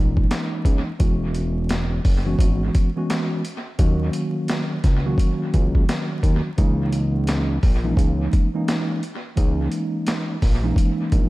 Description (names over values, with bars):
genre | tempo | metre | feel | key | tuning
hip hop, boom-bap hip-hop | 86 BPM | 4/4 | swing 61% on 16ths | C# dorian | A4 = 440 Hz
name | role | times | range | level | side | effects
mellow tine electric piano | accompaniment | 0.0-11.3 s | D#3 to F#4 | -24 LUFS | right 1 dB | medium stereo tremolo, cassette tape, high-pass filter, low-pass filter
fat analog bass | bass | 0.0-11.3 s | E1 to D#2 | -23 LUFS | equal | none
boom bap sampler-style drum kit | drums | 0.2-11.3 s | hi-hat, kick drum, snare drum | -20 LUFS | equal | dub echo
room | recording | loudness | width
little or no reverb | echo-heavy mix, vinyl crackle | -19 LUFS | side -19 dB against mid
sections
0.0-11.3 A section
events
none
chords
0.0 C#m69; 1.0 E6; 3.8 D#m7; 6.6 C#m69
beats
0.30 | 1.00 1.70 2.40 3.10 | 3.79 4.49 5.19 5.89 | 6.58 7.28 7.98 8.68 | 9.37 10.07 10.77